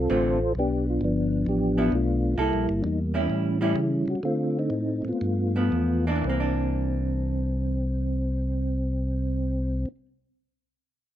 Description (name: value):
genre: soul jazz organ trio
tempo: 112-132 BPM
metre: 4/4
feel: swing 68% on 8ths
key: C mixolydian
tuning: A4 = 440 Hz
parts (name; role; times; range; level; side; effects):
- percussive tonewheel organ; melody; 0.0-9.9 s; E3 to C5; -26 LUFS; equal; slow rotary speaker, chorus vibrato
- tonewheel organ; bass; 0.0-9.9 s; G1 to D3; -27 LUFS; equal; overdrive, slow rotary speaker
- vintage hollow-body jazz guitar; accompaniment; 0.1-10.1 s; D3 to A4; -28 LUFS; right 2 dB; none
room: little or no reverb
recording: close, detailed microphones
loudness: -23 LUFS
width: side -12 dB against mid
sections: 0.0-6.2 A section; 6.2-10.5 B section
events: slowing down 2.4-6.2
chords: 0.0 Dm7; 0.6 G9; 2.4 C6; 3.3 A7; 4.2 D5; 5.2 G13; 6.2 C9